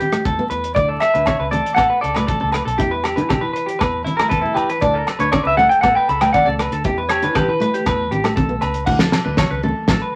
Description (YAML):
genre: highlife guitar band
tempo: 118 BPM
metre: 4/4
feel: straight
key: D major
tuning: A4 = 439 Hz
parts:
  - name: clean electric guitar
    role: arpeggios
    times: 0.0-10.1 s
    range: E4 to F#5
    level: -24 LUFS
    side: equal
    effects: none
  - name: damped 70s drum kit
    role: drums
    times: 0.0-10.0 s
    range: crash cymbal, hi-hat, kick drum, rim click, snare drum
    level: -24 LUFS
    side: equal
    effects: none
  - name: congas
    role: percussion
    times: 0.0-10.0 s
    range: none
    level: -28 LUFS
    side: equal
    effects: none
  - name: picked steel-string acoustic guitar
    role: accompaniment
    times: 0.1-10.1 s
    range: A3 to E4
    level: -29 LUFS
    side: equal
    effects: none
  - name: fingered electric bass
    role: bass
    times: 0.3-10.0 s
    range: A1 to E3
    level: -28 LUFS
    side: equal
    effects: none
  - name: clean electric guitar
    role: melody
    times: 0.8-8.1 s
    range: E4 to B5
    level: -20 LUFS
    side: equal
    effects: none
  - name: agogo bells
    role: percussion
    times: 1.0-10.0 s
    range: none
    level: -30 LUFS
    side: equal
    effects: none
room: moderate small room reverb, RT60 0.5 s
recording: vinyl crackle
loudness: -18 LUFS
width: mono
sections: 0.0-8.9 A section; 8.9-10.2 B section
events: clean electric guitar solo 0.0-8.9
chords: 0.0 Em; 0.8 D5; 2.8 Em; 4.8 D5; 6.9 Em; 8.9 D5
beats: 0.26 | 0.77 1.27 1.78 2.29 | 2.80 3.30 3.81 4.32 | 4.83 5.33 5.84 6.34 | 6.85 7.36 7.86 8.37 | 8.88 9.38 9.88